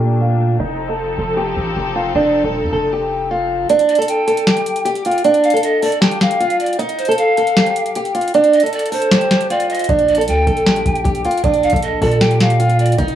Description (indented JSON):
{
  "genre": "hip hop, trap",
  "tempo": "155 BPM",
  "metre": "4/4",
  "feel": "half-time",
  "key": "Bb major",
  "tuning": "A4 = 443 Hz",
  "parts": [
    { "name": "picked old ladder-braced acoustic guitar", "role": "melody", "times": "0.0-13.2 s", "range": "D4 to A4", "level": "-16 LUFS", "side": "right 1 dB", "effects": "low-pass filter, digital delay" },
    { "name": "clear symphonic string section", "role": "sustained chords", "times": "0.0-3.7 s", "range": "F3 to A4", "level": "-25 LUFS", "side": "left 2 dB", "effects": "low-pass filter" },
    { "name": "long sustained 808-style bass", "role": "bass", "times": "0.0-3.7, 9.9-13.2 s", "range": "Eb1 to Bb2", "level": "-19 LUFS", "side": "right 1 dB", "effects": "none" },
    { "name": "booming analog drum machine", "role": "drums", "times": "3.7-13.2 s", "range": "hi-hat, kick drum, snare drum", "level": "-19 LUFS", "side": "left 1 dB", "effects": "none" },
    { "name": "reedy pan flute", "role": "second line", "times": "3.9-13.0 s", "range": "C5 to G5", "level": "-20 LUFS", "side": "equal", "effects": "digital delay" }
  ],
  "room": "light reverb, small room ambience",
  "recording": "none",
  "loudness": "-13 LUFS",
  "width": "side -10 dB against mid",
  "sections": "0.0-3.7 A section; 3.7-13.2 B section",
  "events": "filter sweep 0.0-3.7; kick muted 3.7-9.9",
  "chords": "0.0 Bbmaj7; 0.6 F7; 3.7 N.C.; 9.9 Bb",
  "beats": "0.21 | 0.60 0.99 1.37 1.76 | 2.15 2.53 2.92 3.31 | 3.70 4.08 4.47 4.86 | 5.24 5.63 6.02 6.41 | 6.79 7.18 7.57 7.95 | 8.34 8.73 9.12 9.50 | 9.89 10.28 10.66 11.05 | 11.44 11.82 12.21 12.60 | 12.99"
}